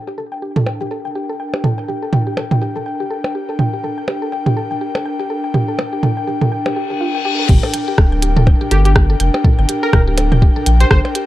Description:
minimal techno; 123 BPM; 4/4; swing 58% on 16ths; G minor; A4 = 440 Hz
airy breathy pad; texture; 0.0-11.3 s; D4 to G5; -22 LUFS; left 2 dB; chorus, sidechain pumping
mallet-like synth pluck; riff; 0.1-11.2 s; F4 to G5; -24 LUFS; left 1 dB; chorus, sidechain pumping, dub echo
electronic toms and percussion blips; percussion; 0.6-11.1 s; -18 LUFS; right 2 dB; digital delay
reverse cymbal; sound effects; 6.8-7.5 s; -21 LUFS; left 7 dB
saturated sub bass; bass; 7.5-11.0 s; D1 to Bb1; -14 LUFS; equal; sidechain pumping
electronic kick drum; drums; 7.5-11.0 s; -12 LUFS; equal
minimal click drum kit; drums; 7.5-11.3 s; crash cymbal, hi-hat, rim click; -20 LUFS; equal; low-pass filter on hats, low-pass filter on snare, low-pass filter on cymbals
plucky unison lead; melody; 8.7-11.0 s; G4 to C5; -22 LUFS; right 2 dB; digital delay
moderate studio ambience, RT60 0.5 s; dark, warm production; -14 LUFS; side -15 dB against mid
0.0-7.5 A section; 7.5-11.3 B section
reverse cymbal 6.8-7.5; drop 7.5-11.3
0.0 Gm
0.18 0.66 1.15 | 1.64 2.13 2.62 3.10 | 3.59 4.08 4.57 5.05 | 5.54 6.03 6.52 7.01 | 7.49 7.98 8.47 8.96 | 9.45 9.93 10.42 10.91

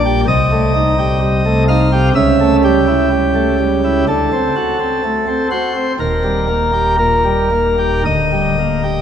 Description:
classical, chorale-style piece for pipe organ; 54-65 BPM; 4/4; rubato; A4 = 440 Hz
chamber organ, principal chorus; solo; 0.0-9.0 s; D1 to F5; -12 LUFS; equal
wet church reverb, RT60 3.7 s; -12 LUFS; side -8 dB against mid
0.0-9.0 A section
0.3 Am7b5/C; 2.2 A7/C#; 4.1 D7; 6.0 Eb; 8.1 Gm/D
| 0.28 1.21 2.15 3.11 | 4.08 5.04 6.00 6.99 | 8.07

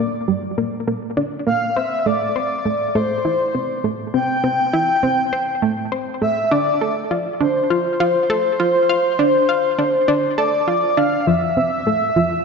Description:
ambient; 101 BPM; 4/4; straight; A phrygian; A4 = 440 Hz
breathy flute-like synth lead; melody; 0.0-12.4 s; C5 to G5; -19 LUFS; left 1 dB; tremolo, analog chorus, analog delay
analog pluck; riff; 0.0-12.4 s; F3 to F5; -20 LUFS; right 1 dB; chorus, analog delay
wet concert hall reverb, RT60 2.2 s; nothing above 7.7 kHz; -16 LUFS; side -5 dB against mid
0.0-11.3 A section; 11.3-12.4 B section
filter sweep on synth arpeggio sound 0.0-11.3, 11.3-12.4
0.0 Gm; 1.8 Am7; 6.5 Dm7; 11.3 Fmaj7
0.58 1.17 | 1.77 2.36 2.95 3.55 | 4.14 4.74 5.33 5.92 | 6.52 7.11 7.71 8.30 | 8.89 9.49 10.08 10.68 | 11.27 11.87

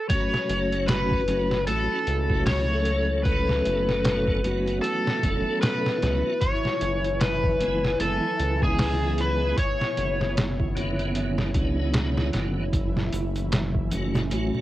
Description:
trip hop; 76 BPM; 4/4; swing 58% on 16ths; F# minor; A4 = 440 Hz
overdriven slide guitar; melody; 0.0-10.3 s; G#4 to C#5; -26 LUFS; left 2 dB; cassette tape, tape echo
tonewheel organ; accompaniment; 0.1-14.6 s; D3 to A4; -30 LUFS; equal; overdrive, chorus vibrato, slow rotary speaker, harmonic tremolo, vintage 12-bit sampler grit, cassette tape
warbly tape-like pad; sustained chords; 0.1-14.6 s; B2 to G#5; -35 LUFS; right 2 dB; chorus, built-in reverb, cassette tape
trip hop sampler-style drum kit; drums; 0.1-14.5 s; hi-hat, kick drum, snare drum; -27 LUFS; equal; cassette tape
flickering grainy texture; texture; 1.3-14.6 s; E3 to E4; -35 LUFS; equal; built-in reverb, cassette tape
round analog bass; bass; 0.5-14.5 s; E1 to C#2; -28 LUFS; equal; tube saturation
tube shaker and congas; percussion; 12.7-14.6 s; -31 LUFS; right 2 dB
light reverb; home recording on cassette; -22 LUFS; side -15 dB against mid
0.1-14.6 A section
0.1 F#m; 6.4 E/F#; 9.6 Bmadd9/F#; 12.7 F#m
| 0.10 0.89 1.68 2.47 | 3.26 4.05 4.84 5.63 | 6.42 7.21 8.00 8.79 | 9.58 10.37 11.15 11.95 | 12.73 13.52 14.31

